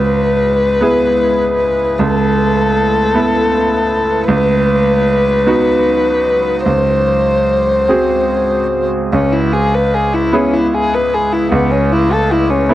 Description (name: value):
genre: neoclassical piano and strings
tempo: 48-53 BPM (dotted quarters)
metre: 6/8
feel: rubato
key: C# minor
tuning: A4 = 441 Hz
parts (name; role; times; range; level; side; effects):
- dark violin; melody; 0.0-12.7 s; B3 to B#4; -14 LUFS; left 2 dB; none
- bright concert grand piano; accompaniment; 0.0-12.7 s; C#2 to A4; -15 LUFS; right 3 dB; none
- deep dark ambient pad; sustained chords; 0.0-12.7 s; F#3 to B#4; -23 LUFS; left 1 dB; chorus, built-in reverb
room: light reverb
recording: worn, warbling old tape, cassette tape, warbly pitch drift, nothing above 10.8 kHz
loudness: -11 LUFS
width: side -14 dB against mid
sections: 0.0-9.1 A section; 9.1-12.7 A section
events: none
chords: 0.0 C#m7; 2.0 Aadd9/C#; 4.3 B/C#; 6.7 G#7/C#; 9.1 C#m7; 11.5 Aadd9/C#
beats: 0.82 | 2.00 3.15 | 4.29 5.46 | 6.65 7.89 | 9.13 10.33 | 11.52 12.69